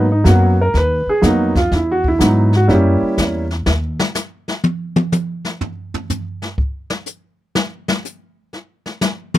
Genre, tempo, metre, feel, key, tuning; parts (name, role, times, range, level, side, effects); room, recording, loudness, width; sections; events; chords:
jazz piano trio; 123 BPM; 4/4; swing 67% on 8ths; A4 = 440 Hz
warm grand piano; melody; 0.0-3.4 s; Gb3 to Cb5; -15 LUFS; right 1 dB
upright bass; bass; 0.0-4.0 s; Eb2 to Ab2; -16 LUFS; equal
jazz brush drum kit; drums; 0.3-9.4 s; brushed snare drum, hi-hat, kick drum, snare drum, toms; -19 LUFS; left 1 dB
little or no reverb; dry, close 1970s-style studio recording; -15 LUFS; side -14 dB against mid
0.0-9.4 A section
grand piano solo 0.0-9.4; drum solo 3.7-9.4
0.0 Abm7; 1.7 Emaj9; 2.7 Gb7b9; 3.7 N.C.